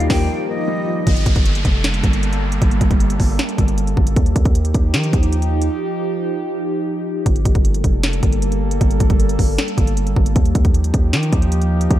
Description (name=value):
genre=hip hop, trap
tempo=155 BPM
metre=4/4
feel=half-time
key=G minor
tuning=A4 = 440 Hz
part: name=breathy jazz flute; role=melody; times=0.0-1.0 s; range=Eb5 to G5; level=-28 LUFS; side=right 1 dB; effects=low-pass filter, diffuse ambient delay
part: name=dark grand piano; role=accompaniment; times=0.0-1.1 s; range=Eb3 to Bb3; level=-26 LUFS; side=left 3 dB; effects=low-pass filter
part: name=warbly tape-like pad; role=sustained chords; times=0.0-12.0 s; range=F3 to A4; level=-22 LUFS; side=right 1 dB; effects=chorus, built-in reverb, phaser
part: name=distorted 808-style bass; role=bass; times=0.0-12.0 s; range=F1 to Eb3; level=-18 LUFS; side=equal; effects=distortion
part: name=trap drum kit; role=drums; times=0.0-12.0 s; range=hi-hat, kick drum, snare drum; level=-17 LUFS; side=equal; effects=none
part: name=downlifter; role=sound effects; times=1.1-4.2 s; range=none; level=-28 LUFS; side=equal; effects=none
room=studio ambience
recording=none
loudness=-15 LUFS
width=side -13 dB against mid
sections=0.0-1.1 A section; 1.1-12.0 B section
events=break 0.3-1.1, 5.7-7.3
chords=0.0 Ebadd9; 1.1 Gmadd9; 4.2 Ebadd9; 7.3 Gmadd9; 10.4 Ebadd9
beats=0.29 0.68 | 1.07 1.45 1.84 2.23 | 2.62 3.00 3.39 3.78 | 4.16 4.55 4.94 5.33 | 5.71 6.10 6.49 6.87 | 7.26 7.65 8.04 8.42 | 8.81 9.20 9.58 9.97 | 10.36 10.74 11.13 11.52 | 11.91